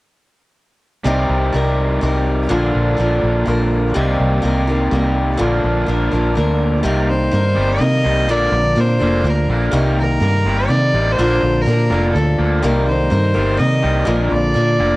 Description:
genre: folk rock and heartland rock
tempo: 124 BPM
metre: 3/4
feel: straight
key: C minor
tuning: A4 = 440 Hz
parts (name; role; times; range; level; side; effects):
- picked steel-string acoustic guitar; accompaniment; 1.0-15.0 s; Bb2 to Bb4; -20 LUFS; left 1 dB; cassette tape
- raw garage guitar; riff; 1.0-15.0 s; Bb2 to G4; -21 LUFS; equal; overdrive, cassette tape
- fingered electric bass; bass; 1.1-15.0 s; F1 to C3; -18 LUFS; equal; none
- clear fiddle; melody; 7.1-15.0 s; A4 to Eb5; -20 LUFS; equal; cassette tape
room: light reverb, small room reverb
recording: home recording on cassette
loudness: -14 LUFS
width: side -20 dB against mid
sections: 1.1-6.8 A section; 6.8-15.0 B section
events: none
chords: 1.1 Cm7; 2.5 Bb; 4.0 Cm7; 5.4 Bb; 6.8 Cm7; 8.3 Bb; 9.7 Cm7; 11.2 Bb; 12.6 Cm7; 14.1 Bb

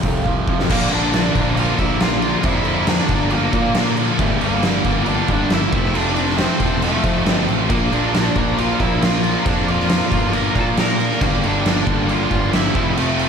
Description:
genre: quiet-loud alternative rock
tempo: 137 BPM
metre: 4/4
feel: straight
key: unclear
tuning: A4 = 439 Hz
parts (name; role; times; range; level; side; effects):
- electric guitar through a small old amp; arpeggios; 0.0-0.7 s; F3 to F4; -28 LUFS; right 1 dB; ensemble chorus, tape echo
- distorted electric guitar; riff; 0.0-13.3 s; F2 to D4; -24 LUFS; right 16 dB; overdrive
- thick fuzz guitar; riff; 0.0-13.3 s; F2 to D4; -24 LUFS; left 12 dB; distortion
- fuzz picked electric bass; bass; 0.0-13.3 s; E1 to Bb2; -23 LUFS; equal; overdrive
- oversized low-tuned drum kit; drums; 0.0-13.3 s; crash cymbal, hi-hat, kick drum, snare drum; -20 LUFS; equal; none
- octave-fuzz lead guitar; melody; 0.7-13.3 s; A3 to Bb5; -24 LUFS; equal; distortion
- rich symphonic string section; sustained chords; 0.7-13.3 s; F3 to Bb5; -32 LUFS; left 4 dB; none
- scooped high-gain guitar; riff; 0.7-13.3 s; F2 to Bb3; -27 LUFS; left 2 dB; distortion
room: small room ambience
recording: none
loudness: -15 LUFS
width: side -6 dB against mid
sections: 0.7-13.3 A section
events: drum fill 0.3-0.7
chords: 0.0 F; 0.7 Bb; 5.7 Fmaj7; 7.7 Bb; 12.8 Fmaj7

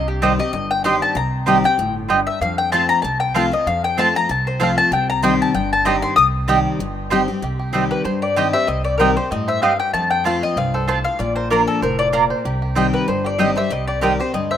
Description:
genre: bluegrass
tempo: 191 BPM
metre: 4/4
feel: swing 54% on 8ths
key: C dorian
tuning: A4 = 436 Hz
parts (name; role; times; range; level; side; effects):
- mandolin; melody; 0.0-14.6 s; G4 to Eb6; -19 LUFS; left 4 dB; none
- picked steel-string acoustic guitar; accompaniment; 0.0-14.6 s; F2 to G4; -22 LUFS; left 4 dB; none
- upright bass; bass; 0.0-14.6 s; F1 to G2; -26 LUFS; right 1 dB; none
- mandolin; stabs; 0.2-14.1 s; Bb3 to Bb5; -21 LUFS; right 6 dB; none
- bluegrass banjo; melody; 2.7-14.6 s; G3 to C5; -29 LUFS; right 5 dB; none
room: light reverb, small room reverb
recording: rough home demo mix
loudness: -16 LUFS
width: side -9 dB against mid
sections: 0.0-7.4 A section; 7.4-14.6 B section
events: mandolin solo 0.0-7.4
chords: 0.0 Cm; 2.4 F; 4.9 Cm; 9.9 F; 11.2 Bb; 12.5 Cm

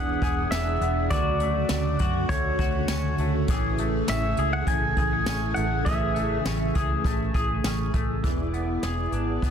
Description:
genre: dream pop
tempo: 101 BPM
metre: 4/4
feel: straight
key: unclear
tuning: A4 = 440 Hz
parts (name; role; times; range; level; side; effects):
- pedal steel guitar; melody; 0.0-7.6 s; C#5 to G#5; -29 LUFS; equal; ping-pong delay
- ensemble organ-string; sustained chords; 0.0-9.5 s; C#3 to D5; -29 LUFS; right 1 dB; ensemble chorus
- semi-hollow electric guitar; arpeggios; 0.0-9.5 s; E3 to G#4; -31 LUFS; left 2 dB; lush chorus, ping-pong delay
- vintage muted fingered electric bass; bass; 0.0-9.5 s; E1 to F#2; -28 LUFS; equal; none
- jazz brush drum kit; drums; 0.2-9.5 s; hi-hat, kick drum, snare drum, tambourine; -28 LUFS; equal; none
room: light reverb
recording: dense, heavily limited modern master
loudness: -23 LUFS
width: side -8 dB against mid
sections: 0.0-8.2 A section; 8.2-9.5 B section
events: none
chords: 0.0 E7; 1.1 Dmaj7; 3.5 Amaj7; 8.2 E7

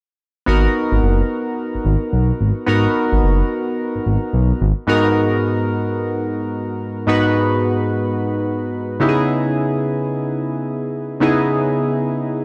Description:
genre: R&B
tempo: 109 BPM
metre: 4/4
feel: swing 61% on 16ths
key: G# minor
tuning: A4 = 440 Hz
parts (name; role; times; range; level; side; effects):
- warm analog keys; accompaniment; 0.5-12.4 s; G#2 to B4; -20 LUFS; equal; chorus
- smooth synth bass; bass; 0.5-4.7 s; F#1 to B1; -18 LUFS; equal; none
room: moderate plate reverb, RT60 3.1 s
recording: none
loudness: -19 LUFS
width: mono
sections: 0.5-4.9 A section; 4.9-12.4 B section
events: none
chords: 0.5 G#m9; 4.6 N.C.; 4.9 G#m9; 9.0 C#m7

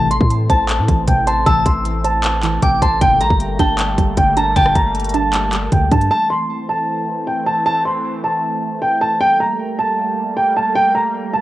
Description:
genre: hip hop, trap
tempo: 155 BPM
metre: 4/4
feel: half-time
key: A phrygian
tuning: A4 = 438 Hz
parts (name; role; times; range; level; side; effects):
- dark concert grand piano; melody; 0.0-11.4 s; G5 to C6; -16 LUFS; equal; cassette tape
- soft round pluck; accompaniment; 0.0-6.1 s; C3 to C5; -25 LUFS; right 8 dB; chorus, cassette tape
- sweeping resonant pad; sustained chords; 0.0-11.4 s; E3 to C4; -25 LUFS; right 1 dB; chorus, cassette tape
- mellow synth brass; stabs; 0.0-4.7 s; D2 to E3; -26 LUFS; left 6 dB; chorus, cassette tape, tape echo
- long sustained 808-style bass; bass; 0.0-6.1 s; G1 to A2; -20 LUFS; equal; none
- soft synth bell; second line; 0.1-6.1 s; G5 to E6; -24 LUFS; left 1 dB; chorus, phaser, cassette tape, tape echo
- trap drum kit; drums; 0.1-6.1 s; handclaps, hi-hat, kick drum, rim click; -18 LUFS; equal; cassette tape
room: light reverb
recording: home recording on cassette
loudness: -14 LUFS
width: side -15 dB against mid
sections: 0.0-6.1 A section; 6.1-11.4 A section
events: none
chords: 0.0 Am; 3.0 Gmadd9; 6.1 Am; 9.2 Gmadd9

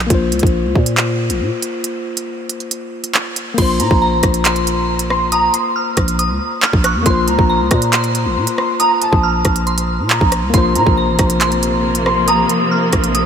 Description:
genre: hip hop, drill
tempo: 138 BPM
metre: 4/4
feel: half-time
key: unclear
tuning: A4 = 438 Hz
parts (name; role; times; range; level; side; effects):
- tine electric piano; accompaniment; 0.0-13.3 s; Bb3 to C5; -21 LUFS; left 5 dB; none
- growling 808-style bass; bass; 0.0-13.3 s; A1 to Bb2; -19 LUFS; right 1 dB; none
- drill drum kit; drums; 0.1-13.2 s; crash cymbal, handclaps, hi-hat, kick drum, rim click; -18 LUFS; right 1 dB; none
- dark grand piano; melody; 3.6-13.3 s; A5 to Db6; -19 LUFS; right 1 dB; ensemble chorus, ping-pong delay
- soft synth bell; second line; 3.6-13.3 s; Bb5 to Gb6; -21 LUFS; right 1 dB; chorus, ping-pong delay
- dark studio string section; sustained chords; 10.5-13.3 s; C3 to Bb3; -19 LUFS; equal; none
room: moderate huge ambient reverb, RT60 8.7 s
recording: dreamy mix soaked in reverb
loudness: -13 LUFS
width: side -8 dB against mid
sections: 0.0-3.6 A section; 3.6-13.3 B section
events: kick muted 2.7-3.6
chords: 0.0 Bbsus2

